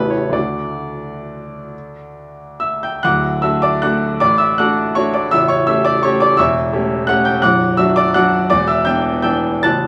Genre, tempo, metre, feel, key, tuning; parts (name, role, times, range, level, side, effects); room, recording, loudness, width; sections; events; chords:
classical, piano waltz; 127-180 BPM; 3/4; rubato; D major; A4 = 438 Hz
bright grand piano; solo; 0.0-9.9 s; A0 to A6; -16 LUFS; equal
light reverb; worn, warbling old tape, cassette tape, warbly pitch drift; -16 LUFS; mono
0.0-3.0 A section; 3.0-9.9 A section
0.3 D; 5.3 A7; 7.4 Bm; 8.5 Em7